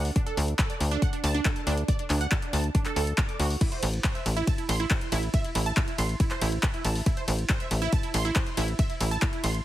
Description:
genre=uplifting trance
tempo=139 BPM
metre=4/4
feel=straight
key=unclear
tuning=A4 = 440 Hz
part: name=tight sequencer bass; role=bass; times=0.0-9.6 s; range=A1 to D2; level=-26 LUFS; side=equal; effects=sidechain pumping
part: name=punchy analog drum machine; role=drums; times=0.1-9.6 s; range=crash cymbal, handclaps, hi-hat, ride cymbal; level=-32 LUFS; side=left 1 dB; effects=overdrive
part: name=wide unison pluck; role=arpeggios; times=0.2-9.5 s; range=D4 to D6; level=-32 LUFS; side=right 4 dB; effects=phaser, sidechain pumping, ping-pong delay
part: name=electronic kick drum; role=drums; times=0.2-9.3 s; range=none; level=-26 LUFS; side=equal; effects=none
room=little or no reverb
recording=heavily compressed radio sound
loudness=-24 LUFS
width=side -14 dB against mid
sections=0.0-9.6 A section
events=none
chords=0.0 D5; 3.6 A5

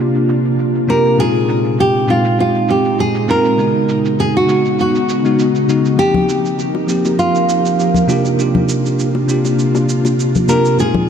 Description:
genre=sunset chillout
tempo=100 BPM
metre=4/4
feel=swing 54% on 16ths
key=unclear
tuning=A4 = 440 Hz
part: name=bell-like tine electric piano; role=accompaniment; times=0.0-11.1 s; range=Bb2 to G4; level=-16 LUFS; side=moving between left 4 dB and right 4 dB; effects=auto-pan, digital delay
part: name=ethereal airy pad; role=sustained chords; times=0.0-11.1 s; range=Bb2 to Bb4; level=-19 LUFS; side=right 1 dB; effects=ensemble chorus, built-in reverb, tremolo
part: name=cabasa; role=drums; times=0.2-10.9 s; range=none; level=-30 LUFS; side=right 6 dB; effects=low-pass filter on perc, studio reverb
part: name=nylon-string guitar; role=melody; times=0.9-11.1 s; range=F4 to Bb4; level=-16 LUFS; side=right 1 dB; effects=ping-pong delay
part: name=congas and bongos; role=percussion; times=6.1-11.1 s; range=none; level=-19 LUFS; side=left 4 dB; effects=none
room=moderate lush hall reverb, RT60 2.6 s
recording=dark, warm production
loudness=-12 LUFS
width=side -8 dB against mid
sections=0.0-11.1 A section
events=filter sweep on drum 0.0-11.1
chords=0.0 C9sus4; 1.2 Bb9sus4; 3.6 Db9sus4; 6.0 F9sus4; 8.1 C9sus4

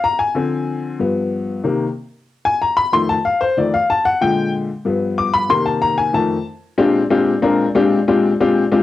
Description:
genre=jazz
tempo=187 BPM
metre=4/4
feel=straight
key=Bb mixolydian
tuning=A4 = 440 Hz
part: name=warm upright piano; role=solo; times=0.0-8.8 s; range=F2 to D6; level=-15 LUFS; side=left 3 dB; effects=cassette tape
room=wet studio reverb, RT60 0.6 s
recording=home recording on cassette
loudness=-15 LUFS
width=side -14 dB against mid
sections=0.0-6.8 A section; 6.8-8.8 B section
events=upright piano solo 0.0-6.8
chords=0.4 Dm7b5; 1.0 G7; 1.6 Cm7; 2.9 F7; 4.2 Bb6; 4.9 G7; 5.5 Cm7; 6.1 F7; 6.8 Bb13

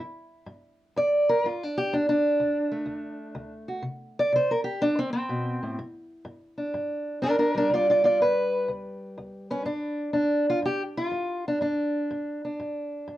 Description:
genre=acoustic country blues, solo or duo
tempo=124 BPM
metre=4/4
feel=swing 68% on 8ths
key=G mixolydian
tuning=A4 = 440 Hz
part: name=fingerpicked steel-string acoustic guitar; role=solo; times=0.0-13.2 s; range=D2 to D5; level=-24 LUFS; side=equal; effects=none
room=moderate small room reverb, RT60 0.5 s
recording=worn, warbling old tape, cassette tape, warbly pitch drift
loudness=-24 LUFS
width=side -14 dB against mid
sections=0.0-9.7 A section; 9.7-13.2 B section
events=steel-string acoustic guitar solo 0.0-9.7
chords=0.0 N.C.; 1.9 D5; 3.9 Amadd9 (rootless); 5.8 G; 9.7 G5

